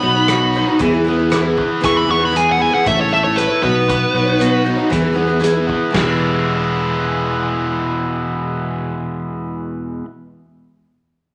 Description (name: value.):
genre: folk rock and heartland rock.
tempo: 116 BPM.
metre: 4/4.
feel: straight.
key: E major.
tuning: A4 = 440 Hz.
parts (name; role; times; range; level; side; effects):
dark smooth lead guitar; melody; 0.0-4.6 s; B4 to C#6; -19 LUFS; equal; overdrive.
picked steel-string acoustic guitar; accompaniment; 0.0-10.1 s; E3 to C#5; -22 LUFS; equal; none.
biting overdriven guitar; riff; 0.0-10.1 s; E2 to G#4; -24 LUFS; equal; none.
fingered electric bass; bass; 0.0-10.0 s; E1 to E2; -25 LUFS; equal; none.
loose indie drum kit; drums; 0.3-6.1 s; crash cymbal, hi-hat, kick drum, rim click, snare drum; -27 LUFS; equal; none.
room: moderate large studio reverb, RT60 1.5 s.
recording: none.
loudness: -17 LUFS.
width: mono.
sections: 0.0-5.9 A section; 5.9-10.1 B section.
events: lead electric guitar solo 0.0-5.9.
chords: 0.0 Badd9; 0.8 E; 2.8 A; 3.6 Badd9; 4.9 E.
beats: 0.28 0.79 1.30 | 1.82 2.33 2.85 3.36 | 3.88 4.39 4.91 5.42 | 5.94 6.46 6.97 7.49 | 8.01 8.52 9.04 9.56.